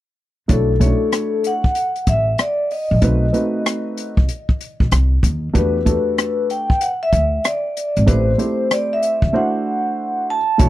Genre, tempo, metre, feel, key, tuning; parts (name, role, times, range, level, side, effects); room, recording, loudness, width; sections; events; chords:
hip hop, jazz-hop; 95 BPM; 4/4; swing 65% on 16ths; B minor; A4 = 439 Hz
vibraphone with soft mallets; melody; 0.5-10.7 s; A4 to A5; -20 LUFS; left 1 dB; tape echo
dark upright piano; accompaniment; 0.5-10.7 s; A3 to C#5; -22 LUFS; right 2 dB
upright bass; bass; 0.5-10.7 s; G#1 to E2; -18 LUFS; equal
open jazz drum kit; drums; 0.5-10.7 s; hi-hat, kick drum, rim click; -18 LUFS; equal
little or no reverb; dry, close 1970s-style studio recording; -16 LUFS; side -15 dB against mid
0.5-10.6 A section
break 9.3-10.6
0.5 Bm11; 3.0 B7b9; 5.5 Em11; 8.1 Am7; 9.3 D7